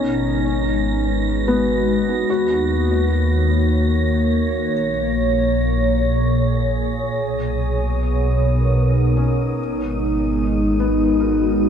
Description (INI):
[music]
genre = ambient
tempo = 74 BPM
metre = 3/4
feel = straight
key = unclear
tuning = A4 = 440 Hz
[part]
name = warbly tape-like pad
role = sustained chords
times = 0.0-11.7 s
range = A#2 to C#5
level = -19 LUFS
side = equal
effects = chorus, built-in reverb, phaser
[part]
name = felt-muted upright piano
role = arpeggios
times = 0.0-4.9, 9.2-11.7 s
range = B3 to G#5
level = -26 LUFS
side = left 2 dB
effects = diffuse ambient delay
[part]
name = warm sub bass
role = bass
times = 0.0-11.7 s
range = G#1 to D#2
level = -22 LUFS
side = equal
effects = tube saturation
[part]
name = wind-like tuned noise texture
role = texture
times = 0.0-11.7 s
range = D#6 to A#6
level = -31 LUFS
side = right 2 dB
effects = built-in reverb
[sound]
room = wet huge ambient reverb, RT60 7.7 s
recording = dark, warm production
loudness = -17 LUFS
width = side -8 dB against mid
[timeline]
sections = 0.0-11.7 A section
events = fade-out on felt piano 0.0-11.7; fade-out on synth texture 0.0-11.7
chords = 0.0 G#m7; 2.3 D#m7; 4.7 A#m7; 7.2 Bmaj7; 9.6 G#m7